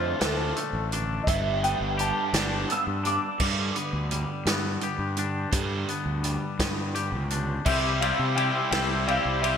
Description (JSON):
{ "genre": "indie rock", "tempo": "56 BPM (dotted quarters)", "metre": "6/8", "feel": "straight", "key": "unclear", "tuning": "A4 = 440 Hz", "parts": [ { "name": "dark upright piano", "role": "melody", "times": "0.0-3.4, 7.7-9.6 s", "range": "A4 to E6", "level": "-29 LUFS", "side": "right 1 dB", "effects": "analog chorus" }, { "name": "raw garage guitar", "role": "riff", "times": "0.0-9.6 s", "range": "G2 to E4", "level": "-33 LUFS", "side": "right 5 dB", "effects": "overdrive, ensemble chorus" }, { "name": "twangy electric guitar", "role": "riff", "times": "0.0-9.6 s", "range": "G2 to G4", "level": "-30 LUFS", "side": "left 6 dB", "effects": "wide subtle chorus" }, { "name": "fuzz fingered electric bass", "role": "bass", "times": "0.0-9.6 s", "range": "G1 to C3", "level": "-30 LUFS", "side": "equal", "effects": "overdrive" }, { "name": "vintage drum kit", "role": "drums", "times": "0.2-9.6 s", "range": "crash cymbal, hi-hat, kick drum, ride cymbal, snare drum", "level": "-30 LUFS", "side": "equal", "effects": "gated reverb" }, { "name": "barky tine electric piano", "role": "second line", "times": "7.7-9.6 s", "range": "C5 to E5", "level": "-39 LUFS", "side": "right 4 dB", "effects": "none" }, { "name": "combo organ", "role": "sustained chords", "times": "7.7-9.6 s", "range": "G4 to C6", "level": "-37 LUFS", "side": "right 1 dB", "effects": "none" } ], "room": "moderate lush hall reverb, RT60 2.6 s", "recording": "bright 1980s-style digital production", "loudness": "-24 LUFS", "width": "side -7 dB against mid", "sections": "0.0-3.4 A section; 3.4-7.7 B section; 7.7-9.6 C section", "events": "upright piano solo 0.0-3.4", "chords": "0.0 Dm; 1.3 G; 7.7 C", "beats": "0.21 | 1.27 2.34 | 3.40 4.47 | 5.53 6.59 | 7.66 8.72" }